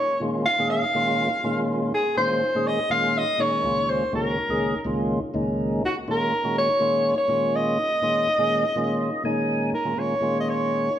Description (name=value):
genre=jazz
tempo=123 BPM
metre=4/4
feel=straight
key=unclear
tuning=A4 = 442 Hz
part: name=mellow soprano saxophone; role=melody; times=0.0-11.0 s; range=Gb4 to F5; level=-22 LUFS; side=equal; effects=none
part: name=tonewheel organ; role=accompaniment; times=0.2-10.9 s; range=Db2 to Ab5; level=-25 LUFS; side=equal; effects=slow rotary speaker
room=wet stone room reverb, RT60 1.3 s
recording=band playing live in one room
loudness=-21 LUFS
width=side -10 dB against mid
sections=0.0-9.7 A section; 9.7-11.0 B section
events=tonewheel organ fill 8.8-9.7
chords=0.0 Bbm7; 3.6 Gbmaj9/Db; 5.8 Ebm9; 7.8 Db69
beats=0.46 0.94 1.43 | 1.92 2.41 2.90 3.38 | 3.87 4.36 4.85 5.34 | 5.83 6.31 6.80 7.29 | 7.78 8.27 8.76 9.24 | 9.73 10.22 10.71